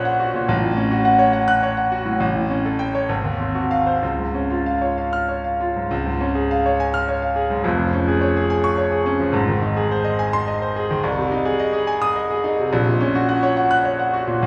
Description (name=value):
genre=classical, virtuoso piano study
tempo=63-72 BPM (dotted quarters)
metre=6/8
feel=rubato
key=Db major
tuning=A4 = 440 Hz
part: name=clear concert grand piano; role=solo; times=0.0-14.5 s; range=F1 to Gb6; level=-20 LUFS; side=equal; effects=none
room=wet recital hall reverb, RT60 1.8 s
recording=heard from further back in the room, studio reverb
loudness=-20 LUFS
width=mono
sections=0.0-5.9 A section; 5.9-14.5 B section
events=none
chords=0.5 Gbm/A; 2.2 A7; 3.1 Ab6; 4.0 Db; 7.6 Db/F; 9.3 Ab; 11.0 Ab/C; 12.7 Gb/Bb